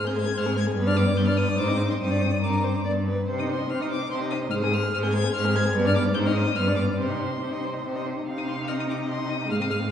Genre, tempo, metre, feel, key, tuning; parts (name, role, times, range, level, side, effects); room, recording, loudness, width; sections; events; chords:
quick classical-period movement for string quartet; 144 BPM; 3/4; uneven beats, rubato; C minor; A4 = 440 Hz
warm violin; melody; 0.0-9.8 s; C6 to Ab6; -30 LUFS; left 2 dB
warm violin; second line; 0.0-9.9 s; Ab4 to F5; -29 LUFS; left 2 dB
dark viola; accompaniment; 0.0-9.9 s; Ab3 to Eb4; -29 LUFS; equal
clear cello; bass; 0.0-9.9 s; G2 to C3; -26 LUFS; equal
wet concert hall reverb, RT60 2.0 s; heard from further back in the room; -22 LUFS; side -9 dB against mid
0.0-8.3 A section; 8.3-9.9 A section
0.0 Ab6; 0.8 G; 1.6 Ab; 2.0 Gsus4; 2.9 G; 3.3 Cm; 4.5 Ab6; 5.7 G; 6.1 Ab; 6.6 G7; 7.0 Cm